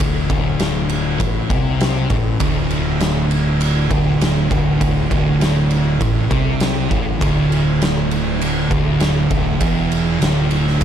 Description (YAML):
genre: stoner and doom metal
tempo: 100 BPM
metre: 4/4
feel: straight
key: unclear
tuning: A4 = 440 Hz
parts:
  - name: thick fuzz guitar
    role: riff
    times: 0.0-10.8 s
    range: D2 to C3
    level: -20 LUFS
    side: left 6 dB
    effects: distortion
  - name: fuzz fingered electric bass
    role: bass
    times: 0.0-10.8 s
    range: D1 to C2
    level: -24 LUFS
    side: equal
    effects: overdrive
  - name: oversized low-tuned drum kit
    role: drums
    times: 0.0-10.8 s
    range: kick drum, ride cymbal, snare drum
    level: -20 LUFS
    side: equal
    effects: none
  - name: thick fuzz guitar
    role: riff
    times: 2.4-10.8 s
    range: D2 to C3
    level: -19 LUFS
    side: right 7 dB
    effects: distortion
room: small room ambience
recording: dark, warm production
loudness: -15 LUFS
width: side -9 dB against mid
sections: 0.0-10.8 A section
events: none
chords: 0.0 D5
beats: | 0.00 0.60 1.20 1.80 | 2.40 3.00 3.61 4.21 | 4.81 5.41 6.01 6.61 | 7.22 7.82 8.42 9.02 | 9.62 10.22 10.82